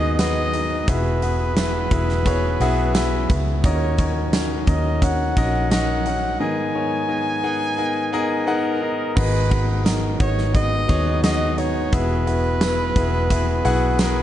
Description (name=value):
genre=piano-driven pop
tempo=87 BPM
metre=4/4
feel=straight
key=G# minor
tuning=A4 = 440 Hz
part: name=warm trumpet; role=melody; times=0.0-14.2 s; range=A#4 to G#5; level=-25 LUFS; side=right 2 dB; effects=plate reverb
part: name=clear grand piano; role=accompaniment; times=0.0-14.2 s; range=G#2 to F#5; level=-23 LUFS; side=left 2 dB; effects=plate reverb
part: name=vintage muted fingered electric bass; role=bass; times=0.0-14.2 s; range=E1 to D#2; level=-22 LUFS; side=equal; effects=none
part: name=huge arena drum kit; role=drums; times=0.2-14.2 s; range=crash cymbal, hi-hat, kick drum, snare drum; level=-23 LUFS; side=right 1 dB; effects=none
part: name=tambourine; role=percussion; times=0.2-14.2 s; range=none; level=-38 LUFS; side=right 11 dB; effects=none
room=light reverb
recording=dark, warm production, nothing above 10.4 kHz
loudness=-18 LUFS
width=side -12 dB against mid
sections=0.0-9.2 A section; 9.2-14.2 A section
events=none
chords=0.0 G#m7; 0.9 Eadd9; 3.6 D#m7; 6.4 G#madd9; 11.9 Eadd9